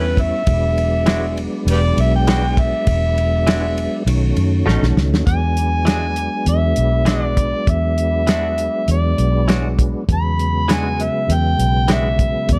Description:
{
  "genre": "straight-eighth soul blues",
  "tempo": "100 BPM",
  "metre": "4/4",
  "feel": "straight",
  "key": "E mixolydian",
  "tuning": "A4 = 438 Hz",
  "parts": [
    { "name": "overdriven harmonica", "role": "melody", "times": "0.0-12.6 s", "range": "G4 to B5", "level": "-24 LUFS", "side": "equal", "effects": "none" },
    { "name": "tonewheel organ", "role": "accompaniment", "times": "0.0-12.6 s", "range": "C#3 to E4", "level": "-26 LUFS", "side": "equal", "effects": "chorus vibrato, slow rotary speaker" },
    { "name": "direct-recorded clean electric guitar", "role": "stabs", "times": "0.0-12.1 s", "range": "B2 to F#4", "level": "-28 LUFS", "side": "equal", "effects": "slapback echo" },
    { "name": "vintage muted fingered electric bass", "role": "bass", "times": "0.0-12.6 s", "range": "E1 to F#2", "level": "-21 LUFS", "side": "equal", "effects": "none" },
    { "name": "warm soul drum kit", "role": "drums", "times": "0.2-12.6 s", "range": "hi-hat, kick drum, ride cymbal, snare drum", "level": "-22 LUFS", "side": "equal", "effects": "none" }
  ],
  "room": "little or no reverb",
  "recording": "none",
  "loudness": "-17 LUFS",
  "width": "mono",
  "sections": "0.0-5.3 A section; 5.3-12.6 B section",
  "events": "harmonica solo 0.0-5.3; drum fill 4.7-5.3",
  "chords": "0.5 E9; 4.1 B9; 5.3 E9"
}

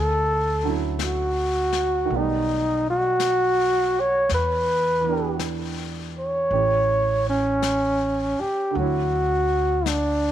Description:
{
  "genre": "jazz ballad",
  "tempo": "54 BPM",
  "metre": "4/4",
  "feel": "swing 68% on 8ths",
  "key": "D major",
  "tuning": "A4 = 439 Hz",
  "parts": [
    { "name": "mellow flugelhorn", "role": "melody", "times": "0.0-10.3 s", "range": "C#4 to C#5", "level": "-21 LUFS", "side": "equal", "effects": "none" },
    { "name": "upright bass", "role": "bass", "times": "0.0-10.3 s", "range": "A1 to E2", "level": "-28 LUFS", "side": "left 1 dB", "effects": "none" },
    { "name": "warm baby grand piano", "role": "accompaniment", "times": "0.6-10.3 s", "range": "D3 to C#5", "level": "-31 LUFS", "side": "right 15 dB", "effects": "none" },
    { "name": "vintage brush drum kit", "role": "drums", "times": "1.0-10.3 s", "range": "brushed snare drum, hi-hat, snare drum", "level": "-35 LUFS", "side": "left 12 dB", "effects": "none" }
  ],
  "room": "light reverb, small room ambience",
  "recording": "1960s-style stereo with parts hard left and right",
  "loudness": "-20 LUFS",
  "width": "side -11 dB against mid",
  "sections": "0.0-8.7 A section; 8.7-10.3 A section",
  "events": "none",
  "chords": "0.0 Dmaj9; 2.1 B7b13; 4.3 Em7; 6.5 A7; 8.7 Dmaj9"
}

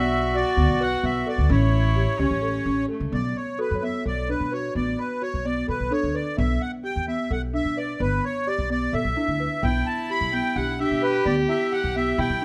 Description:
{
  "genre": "contemporary instrumental, chamber music in an uneven meter",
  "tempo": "258 BPM (eighths)",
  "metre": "7/8",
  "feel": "straight",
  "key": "B minor",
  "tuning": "A4 = 440 Hz",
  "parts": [
    { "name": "accordion", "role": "melody", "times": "0.0-12.4 s", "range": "B4 to B5", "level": "-30 LUFS", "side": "equal", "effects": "light tremolo tuning" },
    { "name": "rich cello", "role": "second line", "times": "0.0-3.1, 9.6-12.4 s", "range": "A3 to G4", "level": "-29 LUFS", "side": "equal", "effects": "none" },
    { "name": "buzzing marimba with soft mallets", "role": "arpeggios", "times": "0.0-12.4 s", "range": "B3 to B4", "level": "-30 LUFS", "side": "equal", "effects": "none" },
    { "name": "upright bass", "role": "bass", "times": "0.0-12.4 s", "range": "G1 to B2", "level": "-28 LUFS", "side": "equal", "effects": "none" },
    { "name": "celesta", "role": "texture", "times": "0.0-6.6, 9.2-12.4 s", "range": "D4 to D5", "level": "-37 LUFS", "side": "equal", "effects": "none" }
  ],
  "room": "moderate recital hall reverb, RT60 1.6 s",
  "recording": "close, detailed microphones",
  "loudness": "-24 LUFS",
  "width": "mono",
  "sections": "0.0-3.1 A section; 3.1-12.4 B section",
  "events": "none",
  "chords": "0.0 Bm; 1.5 A7; 3.1 Bm9; 6.4 A9sus4/B; 9.6 Em7/B"
}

